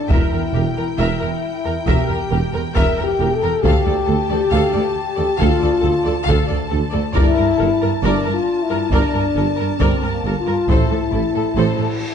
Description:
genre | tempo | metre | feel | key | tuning
cinematic, epic orchestral film score | 68 BPM | 4/4 | straight | D minor | A4 = 440 Hz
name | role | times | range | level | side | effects
rich symphonic violin section | melody | 0.0-12.1 s | G5 to A5 | -30 LUFS | left 4 dB | none
warm French horn section | sustained chords | 0.0-12.1 s | Bb3 to Bb4 | -20 LUFS | left 4 dB | none
clear symphonic violin section | second line | 0.1-11.9 s | E4 to F5 | -27 LUFS | left 3 dB | none
clear symphonic viola section | accompaniment | 0.1-11.9 s | A4 to Bb4 | -26 LUFS | right 3 dB | none
dark tuba | bass | 0.1-11.7 s | E1 to D2 | -25 LUFS | right 4 dB | none
rich symphonic cello section | bass | 0.1-11.9 s | D2 to A2 | -24 LUFS | right 3 dB | none
warm symphonic double bass section | bass | 0.1-11.6 s | E1 to D2 | -24 LUFS | right 3 dB | none
solo taiko drums | drums | 0.1-11.5 s | none | -21 LUFS | left 1 dB | none
cymbal swell | sound effects | 11.5-12.1 s | none | -34 LUFS | right 1 dB | none
room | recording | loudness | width
moderate scoring stage reverb, RT60 1.8 s | dark, warm production, nothing above 10.5 kHz | -15 LUFS | side -8 dB against mid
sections
0.0-12.1 A section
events
cymbal swell 11.5-12.1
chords
0.1 Edim; 3.6 Dm; 7.2 Gmadd9; 10.7 Am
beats
| 0.10 0.99 1.87 2.75 | 3.63 4.51 5.40 6.28 | 7.16 8.04 8.93 9.81 | 10.69 11.57

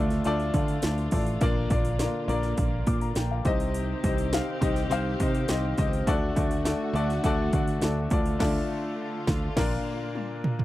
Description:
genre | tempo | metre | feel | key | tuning
piano-driven pop | 103 BPM | 4/4 | straight | unclear | A4 = 440 Hz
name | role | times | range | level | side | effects
warm concert grand piano | accompaniment | 0.0-10.6 s | Bb2 to D6 | -29 LUFS | left 3 dB | none
warm studio string section | sustained chords | 0.0-10.6 s | D3 to G4 | -36 LUFS | right 4 dB | none
picked electric bass | bass | 0.0-9.8 s | A1 to D3 | -29 LUFS | right 1 dB | none
house drum kit | drums | 0.1-10.6 s | crash cymbal, hi-hat, kick drum, snare drum, toms | -28 LUFS | right 1 dB | overdrive
room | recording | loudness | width
little or no reverb | dry, close 1970s-style studio recording | -24 LUFS | side -15 dB against mid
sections
0.0-10.6 A section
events
band accent 8.4-10.6; grand piano fill 9.9-10.6; drum fill 10.2-10.6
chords
0.0 Dm; 1.4 Bb; 3.5 Cm; 6.1 D; 8.1 Dm; 9.6 Bb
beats
0.25 0.83 | 1.42 2.00 2.58 3.16 | 3.75 4.33 4.91 5.49 | 6.08 6.66 7.24 7.82 | 8.41 8.99 9.57 10.15

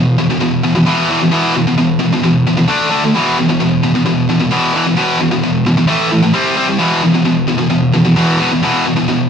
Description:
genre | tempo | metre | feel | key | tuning
metal | 132 BPM | 4/4 | straight | E minor | A4 = 441 Hz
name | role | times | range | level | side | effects
heavy high-gain guitar | solo | 0.0-9.3 s | E2 to D4 | -11 LUFS | equal | distortion
room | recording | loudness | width
moderate studio reverb, RT60 0.7 s | band playing live in one room | -11 LUFS | side -7 dB against mid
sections
0.0-9.3 A section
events
none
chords
0.0 E5; 2.7 D5; 3.2 E5; 5.9 A5; 6.3 C5; 6.8 E5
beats
0.42 0.87 | 1.33 1.79 2.24 2.70 | 3.15 3.61 4.07 4.52 | 4.98 5.43 5.89 6.35 | 6.80 7.26 7.71 8.17 | 8.62 9.08

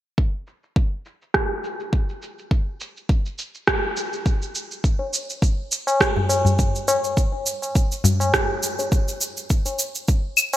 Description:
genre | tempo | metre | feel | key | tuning
downtempo | 103 BPM | 4/4 | swing 55% on 16ths | none | none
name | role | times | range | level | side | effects
electronic cabasa, rim click and claves | drums | 0.2-10.6 s | none | -23 LUFS | right 1 dB | low-pass filter on perc, low-pass filter on snare, low-pass filter on room
electronic kick drum | drums | 0.2-10.2 s | none | -20 LUFS | equal | none
tabla | percussion | 5.0-10.6 s | none | -22 LUFS | left 2 dB | none
room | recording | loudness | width
moderate plate reverb, RT60 2.6 s | dreamy mix soaked in reverb | -20 LUFS | side -13 dB against mid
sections
0.2-9.5 A section; 9.5-10.6 B section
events
filter sweep on drum 0.2-9.5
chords
none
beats
| 0.18 0.76 1.34 1.93 | 2.51 3.09 3.67 4.26 | 4.84 5.42 6.00 6.59 | 7.17 7.75 8.34 8.92 | 9.50 10.08

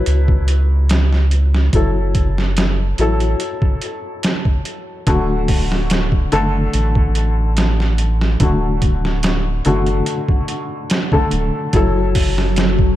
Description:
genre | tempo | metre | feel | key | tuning
trip hop | 72 BPM | 4/4 | straight | F# minor | A4 = 440 Hz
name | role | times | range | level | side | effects
felt-muted upright piano | accompaniment | 0.0-13.0 s | D3 to B4 | -21 LUFS | left 2 dB | harmonic tremolo, tape echo
soft dub sub bass | bass | 0.0-12.9 s | D1 to C#2 | -17 LUFS | equal | none
trip hop sampler-style drum kit | drums | 0.1-13.0 s | hi-hat, kick drum, snare drum | -18 LUFS | equal | overdrive
warbly tape-like pad | sustained chords | 12.0-13.0 s | F#3 to F#4 | -21 LUFS | equal | chorus, built-in reverb, phaser, vintage 12-bit sampler grit
room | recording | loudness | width
little or no reverb | dark, warm production | -14 LUFS | side -14 dB against mid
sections
0.0-13.0 A section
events
none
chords
0.0 F#m7; 5.1 D; 11.7 F#m7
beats
0.07 0.90 | 1.74 2.57 3.40 4.24 | 5.07 5.90 6.74 7.57 | 8.40 9.23 10.07 10.90 | 11.73 12.57

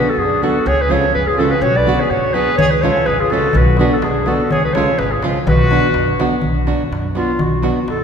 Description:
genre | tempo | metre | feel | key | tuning
balkan folk, Balkan wedding band | 125 BPM | 2/4 | swing 55% on 16ths | B dorian sharp4 | A4 = 438 Hz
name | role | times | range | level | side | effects
warm clarinet | melody | 0.0-8.0 s | E#4 to D5 | -17 LUFS | equal | none
mellow trumpet | second line | 0.0-6.2 s | D4 to B4 | -23 LUFS | left 3 dB | none
nylon-string guitar | accompaniment | 0.0-7.8 s | C#3 to F#4 | -19 LUFS | right 2 dB | none
upright bass | bass | 0.2-8.0 s | G#1 to G#2 | -20 LUFS | left 1 dB | none
darbuka | percussion | 2.6-8.0 s | none | -22 LUFS | left 1 dB | none
room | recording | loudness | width
wet church reverb, RT60 4.0 s | recorded in a church or concert hall | -13 LUFS | side -7 dB against mid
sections
0.0-6.4 A section; 6.4-8.0 B section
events
clarinet solo 6.4-8.0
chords
0.0 Bm; 0.7 C#; 1.6 Bm; 2.6 C#; 3.5 Bm; 4.5 C#; 5.5 Bm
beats
0.18 | 0.67 1.15 | 1.63 2.11 | 2.59 3.07 | 3.55 4.03 | 4.51 4.99 | 5.47 5.95 | 6.43 6.92 | 7.40 7.88

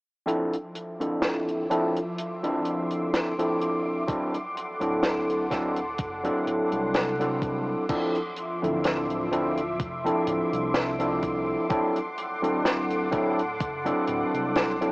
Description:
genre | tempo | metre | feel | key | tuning
vaporwave | 63 BPM | 4/4 | swing 54% on 16ths | D minor | A4 = 440 Hz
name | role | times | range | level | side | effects
overdriven tine electric piano | accompaniment | 0.3-14.9 s | F3 to A4 | -26 LUFS | equal | wide subtle chorus, vintage 12-bit sampler grit, analog delay
soft string machine | sustained chords | 0.7-14.9 s | F3 to D6 | -32 LUFS | equal | ensemble chorus, vintage 12-bit sampler grit
compact cocktail drum kit | drums | 0.3-14.9 s | crash cymbal, hi-hat, snare drum | -29 LUFS | equal | none
electronic kick drum | drums | 4.1-13.8 s | none | -31 LUFS | equal | overdrive
chorused synth bass | bass | 4.8-14.9 s | D1 to C2 | -39 LUFS | equal | tube saturation
room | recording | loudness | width
light reverb | worn, warbling old tape, cassette tape, warbly pitch drift, small speaker sound | -24 LUFS | side -24 dB against mid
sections
0.3-7.9 A section; 7.9-14.9 B section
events
filter sweep on string machine 0.3-7.9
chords
0.3 Dm9; 4.1 D7; 7.9 Dm9; 11.7 D7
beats
| 0.28 1.23 2.18 3.13 | 4.09 5.04 5.99 6.94 | 7.89 8.85 9.80 10.75 | 11.71 12.66 13.61 14.56

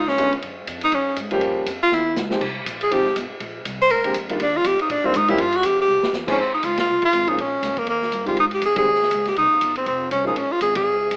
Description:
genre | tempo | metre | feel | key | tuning
jazz, small-group swing and bop | 241 BPM | 4/4 | swing 58% on 8ths | F minor | A4 = 440 Hz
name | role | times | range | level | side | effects
clear tenor saxophone | melody | 0.0-11.2 s | Bb3 to C5 | -21 LUFS | equal | none
upright bass | bass | 0.0-11.2 s | F1 to Bb2 | -37 LUFS | equal | none
vintage drum kit | drums | 0.1-11.2 s | crash cymbal, hi-hat, kick drum, ride cymbal, snare drum | -32 LUFS | equal | none
warm baby grand piano | accompaniment | 0.2-10.4 s | D3 to Ab4 | -27 LUFS | equal | none
room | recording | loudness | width
moderate large studio reverb, RT60 1.2 s | AM radio sound | -21 LUFS | mono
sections
0.0-6.4 A section; 6.4-11.2 B section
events
tenor saxophone solo 0.0-6.4; drum fill 1.9-2.4, 5.9; band accent 6.8, 8.8, 10.7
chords
0.4 Gbmaj7(no3); 1.4 Gm7b5; 1.9 C; 2.4 Fm9; 3.4 Bb69; 4.4 Ebmaj9; 5.4 Fsus2; 5.9 C7; 6.4 Fm; 7.4 Bbm7; 7.9 Eb; 8.4 Abmaj7(no3); 9.4 Cm7 (rootless); 9.9 F5; 10.4 Bbm7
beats
0.18 | 0.43 0.68 0.92 1.17 | 1.42 1.67 1.92 2.17 | 2.42 2.66 2.91 3.16 | 3.41 3.66 3.90 4.15 | 4.40 4.65 4.90 5.14 | 5.39 5.64 5.89 6.14 | 6.39 6.63 6.88 7.13 | 7.38 7.63 7.88 8.13 | 8.38 8.63 8.88 9.12 | 9.37 9.62 9.87 10.12 | 10.37 10.62 10.87 11.11

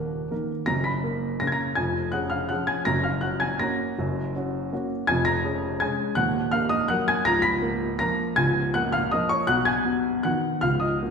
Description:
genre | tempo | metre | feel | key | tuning
classical, piano waltz | 163 BPM | 3/4 | uneven beats, rubato | unclear | A4 = 440 Hz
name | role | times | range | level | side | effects
warm upright piano | solo | 0.0-11.1 s | C#1 to Cb7 | -22 LUFS | equal | none
room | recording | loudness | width
wet recital hall reverb, RT60 1.5 s | recorded in a church or concert hall | -22 LUFS | side -5 dB against mid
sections
0.0-11.1 A section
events
none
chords
0.0 Ebm; 0.7 Gb; 1.8 Db/F; 2.9 Gb; 5.1 C#/E#; 6.2 D#m; 7.3 A#m/C#; 9.5 G#m7/B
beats
0.31 | 0.68 1.04 1.40 | 1.77 2.13 2.50 | 2.87 3.23 3.60 | 3.98 4.34 4.72 | 5.08 5.44 5.81 | 6.17 6.53 6.90 | 7.26 7.62 8.00 | 8.38 8.74 9.13 | 9.50 9.87 10.26 | 10.64 11.02

